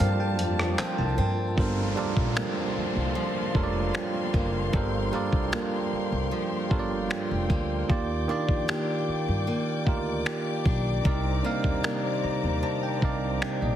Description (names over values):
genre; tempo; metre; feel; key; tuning
contemporary R&B; 76 BPM; 4/4; straight; G minor; A4 = 440 Hz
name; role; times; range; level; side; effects
gliding portamento lead; melody; 0.0-0.8 s; G5; -43 LUFS; equal; none
bell-like tine electric piano; accompaniment; 0.0-13.8 s; C3 to Bb5; -29 LUFS; right 4 dB; none
warm studio string section; sustained chords; 0.0-13.8 s; G3 to D6; -35 LUFS; left 4 dB; none
picked steel-string acoustic guitar; arpeggios; 0.0-13.8 s; G2 to G4; -33 LUFS; left 4 dB; digital delay
upright bass; bass; 0.0-13.8 s; F1 to G2; -29 LUFS; equal; none
dusty soul sampler-style drum kit; drums; 0.0-13.6 s; finger snaps, handclaps, hi-hat, kick drum, rim click; -28 LUFS; equal; none
downlifter; sound effects; 1.6-7.9 s; none; -37 LUFS; left 1 dB; none
room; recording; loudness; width
little or no reverb; heavily compressed radio sound, multiband compression; -24 LUFS; side -11 dB against mid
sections
0.0-1.6 A section; 1.6-13.8 B section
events
break 0.0-1.6; tine electric piano fill 0.0-1.6, 11.8-13.8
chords
0.0 Gm11; 7.9 Ebmaj7; 11.1 Cm9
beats
0.00 0.79 | 1.58 2.37 3.16 3.94 | 4.74 5.52 6.31 7.10 | 7.89 8.68 9.47 10.26 | 11.05 11.84 12.63 13.42